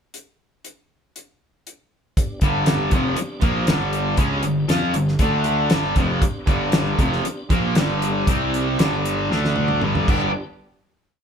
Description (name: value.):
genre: classic rock.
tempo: 118 BPM.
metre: 4/4.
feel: straight.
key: G major.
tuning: A4 = 440 Hz.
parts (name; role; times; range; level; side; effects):
damped 70s drum kit; drums; 0.1-10.2 s; crash cymbal, hi-hat, kick drum, snare drum, toms; -21 LUFS; equal; none.
tonewheel organ; sustained chords; 2.2-10.5 s; B3 to D5; -35 LUFS; equal; none.
distorted electric guitar; riff; 2.4-10.3 s; F2 to G4; -26 LUFS; left 8 dB; overdrive.
distorted electric guitar; riff; 2.4-10.3 s; F2 to G4; -23 LUFS; right 4 dB; distortion.
fuzz fingered electric bass; bass; 2.4-10.3 s; F1 to F2; -25 LUFS; equal; overdrive.
room: moderate studio reverb, RT60 0.8 s.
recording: band playing live in one room.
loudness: -18 LUFS.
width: side -7 dB against mid.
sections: 0.1-2.2 pickup bar; 2.2-10.3 riff; 10.3-11.2 final hit.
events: drum fill 9.3-10.3.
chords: 0.1 N.C.; 2.2 G; 5.2 D5; 5.7 G; 8.3 C5; 8.8 G; 9.3 D5; 9.8 G.